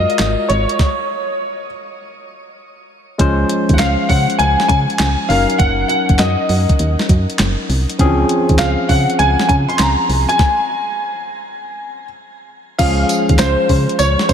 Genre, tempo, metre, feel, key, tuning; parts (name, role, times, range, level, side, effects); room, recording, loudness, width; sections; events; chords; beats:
R&B, new jack swing; 100 BPM; 4/4; swing 67% on 16ths; A4 = 440 Hz
warm concert grand piano; melody; 0.0-14.3 s; C5 to C6; -18 LUFS; equal; ensemble chorus, analog delay, shimmer reverb
barky tine electric piano; accompaniment; 0.0-14.3 s; Fb3 to C5; -20 LUFS; left 2 dB; wide subtle chorus, shimmer reverb
solid FM bass; bass; 0.0-14.3 s; Gb1 to Db3; -17 LUFS; equal
crisp 8-bit digital drum machine; drums; 0.1-14.3 s; crash cymbal, handclaps, hi-hat, kick drum, snare drum, tambourine; -17 LUFS; equal
moderate plate reverb, RT60 3.2 s; dreamy mix soaked in reverb; -13 LUFS; side -8 dB against mid
0.0-3.2 A section; 3.2-12.8 B section; 12.8-14.3 C section
stop 0.8-3.2, 10.4-12.8
0.0 Gbmaj9; 0.8 N.C.; 3.2 Dbmaj7; 5.3 Gb6; 8.0 Dbmaj7
0.19 | 0.79 1.39 1.99 2.59 | 3.19 3.79 4.39 4.99 | 5.59 6.19 6.79 7.39 | 7.99 8.59 9.19 9.79 | 10.39 10.99 11.59 12.19 | 12.79 13.39 13.99